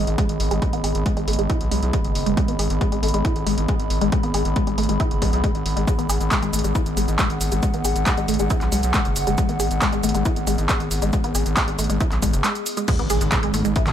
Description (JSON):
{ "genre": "driving peak-time techno", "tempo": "137 BPM", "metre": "4/4", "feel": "straight", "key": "G# minor", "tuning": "A4 = 440 Hz", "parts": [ { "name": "resonant blip pluck", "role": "riff", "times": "0.0-13.8 s", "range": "G#3 to G#4", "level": "-26 LUFS", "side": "left 1 dB", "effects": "chorus, phaser, sidechain pumping, digital delay" }, { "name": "gritty driven synth bass", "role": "bass", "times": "0.0-13.9 s", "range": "F#1 to B1", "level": "-24 LUFS", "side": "equal", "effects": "distortion, sidechain pumping" }, { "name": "warbly tape-like pad", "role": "texture", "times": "0.0-13.9 s", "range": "B3 to B5", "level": "-28 LUFS", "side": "equal", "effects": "chorus, built-in reverb, sidechain pumping" }, { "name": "punchy analog drum machine", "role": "drums", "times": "0.1-13.9 s", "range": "crash cymbal, handclaps, hi-hat, shaker, toms", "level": "-26 LUFS", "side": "right 1 dB", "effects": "sidechain pumping on hats, sidechain pumping on perc, sidechain pumping on cymbals, sidechain pumping on toms" }, { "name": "electronic kick drum", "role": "drums", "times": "0.2-13.8 s", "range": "none", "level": "-23 LUFS", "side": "equal", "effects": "none" }, { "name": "analog drone", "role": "drone", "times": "13.5-13.9 s", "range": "G#2 to D#3", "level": "-32 LUFS", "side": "left 1 dB", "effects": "none" }, { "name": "impact", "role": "sound effects", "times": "12.9-13.9 s", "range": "none", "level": "-29 LUFS", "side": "equal", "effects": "none" } ], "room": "digital ambience", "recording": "none", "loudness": "-19 LUFS", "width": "side -10 dB against mid", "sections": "0.0-12.9 A section; 12.9-13.9 B section", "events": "break 12.4-12.9; drop 12.9-13.9; impact 12.9-13.9", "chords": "0.0 G#m" }